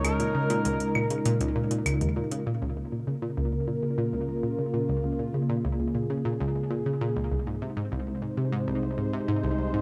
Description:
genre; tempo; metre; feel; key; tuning
ambient, sequencer-driven space music; 99 BPM; 4/4; straight; Bb minor; A4 = 440 Hz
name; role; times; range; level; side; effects
expressive synth lead; melody; 0.0-1.8 s; Bb4; -36 LUFS; equal; subtle chorus, tape echo
sweeping resonant pad; sustained chords; 0.0-9.8 s; C3 to C5; -32 LUFS; equal; subtle chorus
analog pluck; riff; 0.0-9.8 s; C2 to Db3; -31 LUFS; equal; chorus, tape echo
electronic hi-hat and claves; percussion; 0.0-2.4 s; none; -35 LUFS; equal; overdrive, tape echo
room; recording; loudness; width
moderate plate reverb, RT60 3.4 s; none; -28 LUFS; mono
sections
0.0-2.5 A section; 2.5-9.8 B section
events
none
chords
0.0 Bbm7; 2.5 Bbm; 7.3 Ab

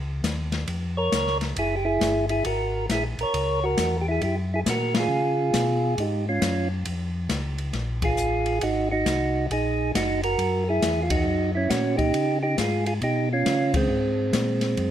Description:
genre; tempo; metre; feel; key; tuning
soul jazz organ trio; 136 BPM; 4/4; swing 65% on 8ths; unclear; A4 = 441 Hz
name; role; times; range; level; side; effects
mellow tonewheel organ; bass; 0.0-14.9 s; Gb1 to Db3; -28 LUFS; left 1 dB; chorus vibrato, slow rotary speaker
open jazz drum kit; drums; 0.2-14.9 s; hi-hat, kick drum, ride cymbal, snare drum; -30 LUFS; left 2 dB; none
percussive tonewheel organ; melody; 1.0-14.9 s; Ab3 to Db5; -24 LUFS; right 2 dB; slow rotary speaker
room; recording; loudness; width
light reverb; none; -22 LUFS; side -10 dB against mid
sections
0.0-14.9 A section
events
band accent 4.9, 8.0, 11.0, 13.7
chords
0.0 Dbadd9; 1.6 Gb9; 5.1 Db7; 8.6 Ab9; 10.4 Gb7; 12.1 Db9; 13.9 Ab9

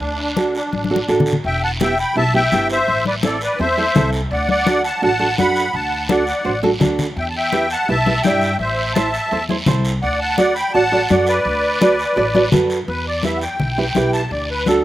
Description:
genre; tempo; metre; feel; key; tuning
latin, cumbia; 168 BPM; 4/4; straight; E minor; A4 = 439 Hz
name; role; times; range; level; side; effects
musette accordion; melody; 0.0-14.8 s; D4 to B5; -19 LUFS; equal; slapback echo
upright bass; bass; 0.0-14.8 s; E1 to G2; -25 LUFS; equal; none
congas; percussion; 0.0-14.8 s; none; -20 LUFS; left 4 dB; none
guiro; percussion; 0.0-14.8 s; none; -28 LUFS; right 2 dB; none
nylon-string guitar; accompaniment; 0.4-14.8 s; B3 to D5; -19 LUFS; right 2 dB; none
room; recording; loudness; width
little or no reverb; recorded outdoors, with no room sound; -15 LUFS; side -14 dB against mid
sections
0.0-1.4 A section; 1.4-12.9 B section; 12.9-14.8 C section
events
drum fill 0.7-1.4; accordion solo 12.9-14.8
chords
0.0 D; 1.4 Em; 2.9 Am; 4.3 D; 7.2 Em; 8.6 Am; 10.0 D; 12.9 Em; 14.3 D

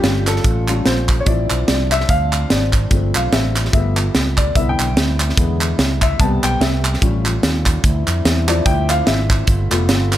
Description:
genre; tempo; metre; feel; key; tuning
uptempo gospel; 146 BPM; 4/4; swing 57% on 8ths; unclear; A4 = 440 Hz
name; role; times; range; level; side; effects
warm baby grand piano; accompaniment; 0.0-10.2 s; C3 to A5; -21 LUFS; left 3 dB; none
mellow French horn section; sustained chords; 0.0-10.2 s; C3 to G4; -28 LUFS; right 1 dB; none
fingered electric bass; bass; 0.0-10.2 s; F1 to F2; -19 LUFS; equal; none
crisp fusion drum kit; drums; 0.0-10.2 s; hi-hat, kick drum, snare drum; -18 LUFS; right 1 dB; none
group handclap; percussion; 0.3-10.2 s; none; -24 LUFS; right 2 dB; none
room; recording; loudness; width
light reverb; none; -14 LUFS; side -13 dB against mid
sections
0.0-10.2 A section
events
grand piano solo 0.0-10.2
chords
0.0 Aaug7; 1.3 Dm9/A; 2.9 G7sus4; 3.7 G9; 4.6 Cmaj9; 5.4 E7; 6.2 Am9; 7.0 A7b13; 7.8 Dm9; 9.5 G9

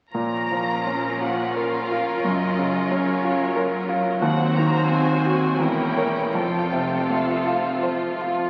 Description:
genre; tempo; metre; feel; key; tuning
classical; 79-92 BPM; 3/4; rubato; Bb minor; A4 = 440 Hz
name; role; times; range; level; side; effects
clear grand piano; melody; 0.1-8.5 s; Eb2 to C#5; -25 LUFS; equal; none
warm studio violin section; melody; 0.1-7.8 s; Db5 to Bb5; -33 LUFS; equal; none
rich studio violin section; second line; 0.1-8.5 s; E4 to C5; -30 LUFS; equal; none
rich studio viola section; accompaniment; 0.1-8.5 s; F3 to Db4; -32 LUFS; equal; none
clear studio cello section; bass; 0.1-8.4 s; Eb2 to Bb2; -36 LUFS; equal; none
rich studio double bass section; bass; 0.1-8.4 s; E1 to Eb2; -39 LUFS; equal; none
room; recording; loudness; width
wet scoring stage reverb, RT60 2.0 s; very old 78 rpm record, vinyl crackle; -22 LUFS; mono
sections
0.1-8.5 A section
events
none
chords
0.1 Bbm; 2.2 Gbmaj7; 4.2 Cdim/Eb; 5.6 Edim7; 6.3 F

